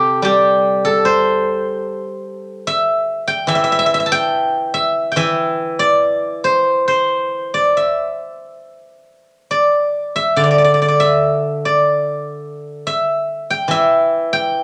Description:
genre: chinese traditional, Chinese solo plucked strings.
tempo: 71 BPM.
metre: 4/4.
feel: uneven beats, rubato.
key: unclear.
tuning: A4 = 440 Hz.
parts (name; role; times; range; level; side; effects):
steel-string zither; solo; 0.0-14.6 s; C3 to A5; -17 LUFS; equal; none.
room: moderate club reverb, RT60 0.7 s.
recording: none.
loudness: -16 LUFS.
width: mono.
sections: 0.0-14.6 A section.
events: none.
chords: none.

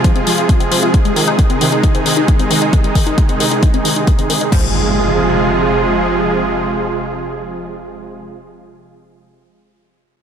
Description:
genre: uplifting trance.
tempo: 134 BPM.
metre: 4/4.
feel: straight.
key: F minor.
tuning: A4 = 440 Hz.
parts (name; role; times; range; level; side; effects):
supersaw pad; sustained chords; 0.0-8.1 s; C3 to Ab4; -16 LUFS; right 2 dB; sidechain pumping.
analog pluck; arpeggios; 0.0-4.7 s; Eb3 to F4; -20 LUFS; left 3 dB; chorus, sidechain pumping, dub echo.
electronic kick drum; drums; 0.0-4.6 s; none; -13 LUFS; equal; overdrive, studio reverb.
house drum kit; drums; 0.0-4.6 s; crash cymbal, hi-hat; -21 LUFS; left 5 dB; overdrive, studio reverb.
impact; sound effects; 4.5-8.1 s; none; -22 LUFS; equal; none.
room: moderate scoring stage reverb, RT60 1.8 s, digital ambience.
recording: none.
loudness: -12 LUFS.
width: side -8 dB against mid.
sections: 0.0-4.5 A section; 4.5-8.1 B section.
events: none.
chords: 0.0 Fm; 0.9 Ab; 4.5 Fm.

